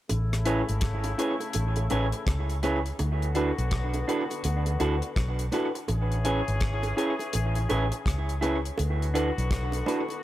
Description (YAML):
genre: lovers rock reggae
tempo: 83 BPM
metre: 4/4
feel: swing 61% on 16ths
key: A major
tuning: A4 = 440 Hz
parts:
  - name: clear horn section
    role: second line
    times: 0.1-10.2 s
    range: C#3 to G#4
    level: -36 LUFS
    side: left 3 dB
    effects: analog delay
  - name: vintage muted fingered electric bass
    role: bass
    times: 0.1-9.8 s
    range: G#1 to D2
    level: -28 LUFS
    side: equal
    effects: none
  - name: deep reggae drum kit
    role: drums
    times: 0.1-10.2 s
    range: hi-hat, kick drum, rim click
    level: -32 LUFS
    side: equal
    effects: analog delay
  - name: bongos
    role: percussion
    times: 0.1-10.2 s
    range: none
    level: -37 LUFS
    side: right 3 dB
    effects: none
  - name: mellow tine electric piano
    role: accompaniment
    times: 0.5-10.0 s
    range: C#4 to B4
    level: -32 LUFS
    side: left 2 dB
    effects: medium stereo tremolo
  - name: electric guitar through a small old amp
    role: stabs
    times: 0.5-10.0 s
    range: D4 to C#5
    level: -31 LUFS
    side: right 4 dB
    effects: analog delay
room: light reverb, small room ambience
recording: none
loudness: -25 LUFS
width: side -14 dB against mid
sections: 0.1-10.2 A section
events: none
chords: 0.1 Amaj7; 3.0 D6; 5.9 Amaj7; 8.8 D6